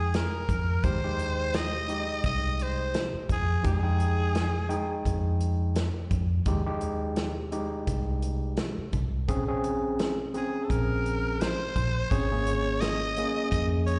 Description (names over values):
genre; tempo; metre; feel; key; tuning
straight-eighth soul blues; 85 BPM; 4/4; swing 55% on 16ths; F minor; A4 = 439 Hz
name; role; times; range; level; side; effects
raspy tenor saxophone; melody; 0.0-5.0, 10.4-14.0 s; Ab4 to Eb5; -34 LUFS; equal; slapback echo, tape echo
overdriven tine electric piano; accompaniment; 0.0-14.0 s; Ab3 to G5; -34 LUFS; equal; slapback echo
vintage muted fingered electric bass; bass; 0.0-14.0 s; Ab1 to F2; -31 LUFS; equal; none
warm soul drum kit; drums; 0.1-14.0 s; hi-hat, kick drum, snare drum; -33 LUFS; equal; slapback echo
room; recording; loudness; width
studio reverb; live gig heard through the venue's PA, recital hall reverb, nothing above 10.6 kHz; -28 LUFS; mono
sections
0.0-14.0 A section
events
none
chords
0.0 Fm7; 9.3 Bbm7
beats
0.13 | 0.84 1.54 2.25 2.95 | 3.65 4.36 5.06 5.77 | 6.47 7.18 7.88 8.59 | 9.29 9.99 10.70 11.40 | 12.11 12.81 13.52